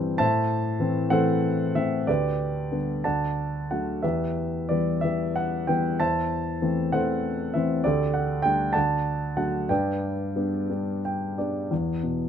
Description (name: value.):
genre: classical, lyrical solo piano.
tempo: 58-68 BPM (dotted quarters).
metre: 6/8.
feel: rubato.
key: G major.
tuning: A4 = 440 Hz.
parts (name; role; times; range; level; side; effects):
warm grand piano; solo; 0.0-12.3 s; D2 to A5; -23 LUFS; equal; none.
room: light reverb.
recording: minimal, uncompressed stereo recording.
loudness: -23 LUFS.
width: side -8 dB against mid.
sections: 0.0-11.7 A section.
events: grand piano fill 10.7-11.7.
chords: 0.2 Am; 2.1 G/D; 3.0 D; 4.0 Em; 6.0 Am/E; 7.8 Dsus4; 8.8 D; 9.7 G; 11.7 E5.